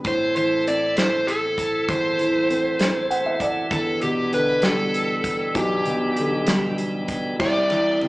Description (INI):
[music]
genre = six-eight pop ballad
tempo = 65 BPM (dotted quarters)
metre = 6/8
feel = straight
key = unclear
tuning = A4 = 440 Hz
[part]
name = dark upright piano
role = accompaniment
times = 0.0-8.1 s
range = B1 to F#5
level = -24 LUFS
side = equal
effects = none
[part]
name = tonewheel organ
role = sustained chords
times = 0.0-8.1 s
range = C3 to A4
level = -29 LUFS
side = equal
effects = overdrive, slow rotary speaker
[part]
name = natural country drum kit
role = drums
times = 0.0-8.1 s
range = crash cymbal, hi-hat, kick drum, ride cymbal, snare drum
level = -26 LUFS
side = equal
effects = none
[part]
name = overdriven slide guitar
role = melody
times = 0.1-8.0 s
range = G4 to D5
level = -22 LUFS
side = equal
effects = none
[sound]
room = moderate large studio reverb, RT60 0.8 s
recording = band playing live in one room, small speaker sound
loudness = -19 LUFS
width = side -20 dB against mid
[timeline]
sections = 0.0-7.4 A section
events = upright piano fill 2.8-3.7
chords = 0.1 Am; 3.7 Em7; 7.4 C